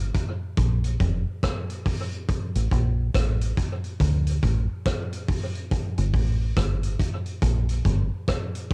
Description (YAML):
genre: roots reggae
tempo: 70 BPM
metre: 4/4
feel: swing 61% on 16ths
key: unclear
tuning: A4 = 440 Hz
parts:
  - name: deep dub fingered electric bass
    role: bass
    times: 0.0-8.1 s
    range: F1 to D2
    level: -22 LUFS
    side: equal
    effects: none
  - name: vintage drum kit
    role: drums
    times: 0.1-8.7 s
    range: hi-hat, kick drum, rim click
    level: -25 LUFS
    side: equal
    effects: cassette tape
room: little or no reverb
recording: home recording on cassette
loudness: -22 LUFS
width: side -35 dB against mid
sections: 0.0-8.7 A section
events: none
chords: none